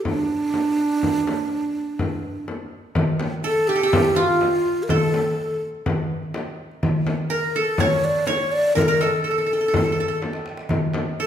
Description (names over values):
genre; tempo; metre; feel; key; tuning
Arabic maqam ensemble; 124 BPM; 4/4; straight; unclear; A4 = 440 Hz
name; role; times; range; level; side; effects
breathy mellow ney; melody; 0.0-11.3 s; D4 to D5; -21 LUFS; equal; none
frame drum; percussion; 0.1-11.1 s; none; -26 LUFS; left 2 dB; none
darbuka; percussion; 3.0-11.0 s; none; -26 LUFS; equal; none
qanun; second line; 3.4-11.3 s; F4 to C#5; -24 LUFS; right 2 dB; none
room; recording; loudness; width
wet recital hall reverb, RT60 1.6 s; minimal, uncompressed stereo recording; -19 LUFS; side -9 dB against mid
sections
0.0-3.0 A section; 3.0-11.3 B section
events
drum fill 10.2-10.7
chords
none